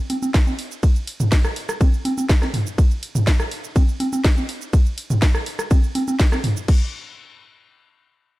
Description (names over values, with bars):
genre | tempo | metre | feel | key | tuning
house | 123 BPM | 4/4 | straight | none | none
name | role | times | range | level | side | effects
house drum kit | drums | 0.1-6.8 s | crash cymbal, hi-hat, ride cymbal, shaker, snare drum | -28 LUFS | equal | none
punchy analog drum machine | percussion | 0.1-6.5 s | congas, rim click, toms | -23 LUFS | right 1 dB | sidechain pumping on perc, sidechain pumping on toms, sidechain pumping on snare
electronic kick drum | drums | 0.3-6.8 s | none | -16 LUFS | equal | none
room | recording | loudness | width
little or no reverb | dark, warm production | -17 LUFS | side -18 dB against mid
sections
0.0-6.7 A section; 6.7-8.4 B section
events
drop 0.0-6.7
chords
none